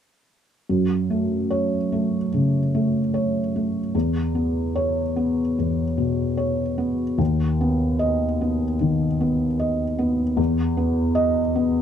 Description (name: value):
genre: neoclassical minimalist piano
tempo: 74 BPM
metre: 4/4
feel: rubato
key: unclear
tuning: A4 = 440 Hz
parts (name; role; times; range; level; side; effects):
- felt-muted upright piano; solo; 0.7-11.8 s; D#2 to D#5; -20 LUFS; equal; none
room: light reverb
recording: close, detailed microphones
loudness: -20 LUFS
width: side -9 dB against mid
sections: 0.7-11.8 A section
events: none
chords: 0.7 F#m; 3.9 C#m7/E; 7.2 B/D#; 10.4 E5